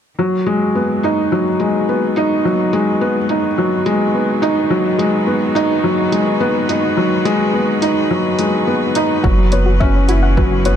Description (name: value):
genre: piano and strings electronica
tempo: 106 BPM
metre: 4/4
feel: straight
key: G# minor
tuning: A4 = 440 Hz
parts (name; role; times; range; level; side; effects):
- warm string quartet; sustained chords; 0.2-10.8 s; D#3 to B4; -26 LUFS; equal; sidechain pumping
- felt-muted upright piano; riff; 0.2-10.8 s; F#3 to E4; -14 LUFS; equal; ping-pong delay
- electronic hi-hat; drums; 0.5-10.8 s; none; -28 LUFS; right 2 dB; overdrive, low-pass filter on hats, studio reverb
- soft round pluck; arpeggios; 9.2-10.8 s; F#4 to F#5; -22 LUFS; left 4 dB; chorus, sidechain pumping, ping-pong delay
- round analog bass; bass; 9.2-10.8 s; F#1; -15 LUFS; right 1 dB; sidechain pumping
- electronic kick drum; drums; 9.2-10.5 s; none; -17 LUFS; right 1 dB; overdrive, studio reverb
room: light reverb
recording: none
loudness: -13 LUFS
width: side -9 dB against mid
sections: 0.2-10.8 A section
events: fade-in on string quartet 0.2-10.8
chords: 0.2 G#m7; 9.2 F#7sus4